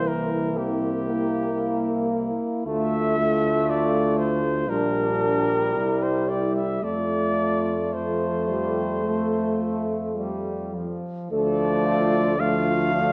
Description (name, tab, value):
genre	classical, hymn-like piece for brass band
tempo	51-61 BPM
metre	4/4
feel	rubato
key	F major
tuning	A4 = 436 Hz
part	warm flugelhorn	melody	0.0-13.1 s	G4 to F5	-29 LUFS	equal	none
part	mellow French horn section	second line	0.0-13.1 s	D4 to A4	-32 LUFS	equal	none
part	clear euphonium	accompaniment	0.0-13.1 s	E3 to C4	-31 LUFS	equal	none
part	mellow trombone section	accompaniment	0.0-13.1 s	F3 to Bb3	-31 LUFS	equal	none
part	warm tuba	bass	0.0-13.1 s	Bb1 to F2	-31 LUFS	equal	none
room	moderate recital hall reverb, RT60 1.4 s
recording	worn, warbling old tape, cassette tape, warbly pitch drift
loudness	-24 LUFS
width	mono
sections	0.0-11.3 A section; 11.3-13.1 B section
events	none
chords	0.0 C7; 2.7 Dm; 4.7 Gm/Bb; 5.7 C; 6.8 F; 11.3 Dm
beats	0.58 1.58 | 2.66 3.69 4.68 5.74 | 6.82 7.91 9.03 10.17 | 11.31 12.39